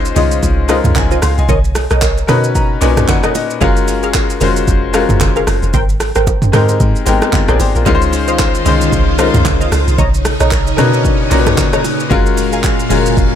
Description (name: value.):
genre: amapiano.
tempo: 113 BPM.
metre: 4/4.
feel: swing 58% on 16ths.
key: Db major.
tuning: A4 = 439 Hz.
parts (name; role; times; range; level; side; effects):
bright grand piano; accompaniment; 0.0-13.4 s; Bb2 to C6; -16 LUFS; left 6 dB; none.
punchy chord stab; stabs; 0.0-13.2 s; F4 to Bb5; -20 LUFS; right 1 dB; chorus, digital delay.
deep log drum bass; bass; 0.0-13.4 s; F1 to Cb3; -16 LUFS; equal; none.
deep house drum kit; drums; 0.1-13.3 s; handclaps, hi-hat, kick drum, rim click, shaker, toms; -16 LUFS; right 1 dB; overdrive.
congas and bongos; percussion; 0.2-13.0 s; none; -23 LUFS; right 8 dB; none.
string machine, violins; sustained chords; 7.9-13.4 s; Bb2 to F5; -18 LUFS; equal; ensemble chorus, sidechain pumping.
room: little or no reverb.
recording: none.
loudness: -10 LUFS.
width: side -9 dB against mid.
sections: 0.0-13.4 A section.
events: grand piano fill 2.0-3.6.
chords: 0.0 Dbmaj9; 1.5 Cbmaj9; 3.6 Gbmaj9; 5.7 Abmaj9; 7.9 Dbmaj9; 10.0 Cbmaj9; 12.1 Gbmaj9.